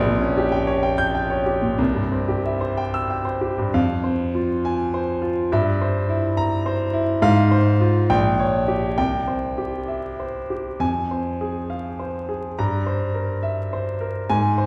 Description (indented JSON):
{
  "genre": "classical, virtuoso piano study",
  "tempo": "60-71 BPM (dotted quarters)",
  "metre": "6/8",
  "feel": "rubato",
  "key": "F minor",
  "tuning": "A4 = 440 Hz",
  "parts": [
    { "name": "clear grand piano", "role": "solo", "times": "0.0-14.7 s", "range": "Bb1 to G6", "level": "-22 LUFS", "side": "equal", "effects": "none" }
  ],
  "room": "wet recital hall reverb, RT60 1.6 s",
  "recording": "heard from further back in the room, vinyl crackle",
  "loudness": "-22 LUFS",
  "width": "mono",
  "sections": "0.0-3.7 A section; 3.7-14.7 B section",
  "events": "none",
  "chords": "0.0 Gdim/Bb; 1.8 C; 3.7 Fm; 5.5 C7/G; 7.2 Fm/Ab; 8.1 Gdim/Bb; 9.0 C; 10.8 Fm; 12.6 C7/G"
}